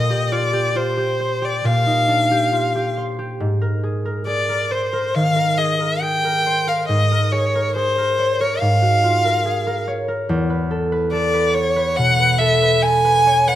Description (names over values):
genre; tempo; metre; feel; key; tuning
classical, impressionist duo for violin and harp; 69 BPM; 4/4; rubato; unclear; A4 = 440 Hz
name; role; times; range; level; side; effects
clear violin; melody; 0.0-13.6 s; C5 to G#5; -18 LUFS; left 1 dB; none
concert harp; accompaniment; 0.0-13.6 s; E2 to Db5; -20 LUFS; equal; none
room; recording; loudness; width
moderate recital hall reverb, RT60 1.4 s; close, detailed microphones; -16 LUFS; side -12 dB against mid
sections
0.0-13.6 A section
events
none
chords
0.0 Eb69/Bb; 3.4 Abadd9; 6.9 Gbmaj7/Ab; 10.3 Esus2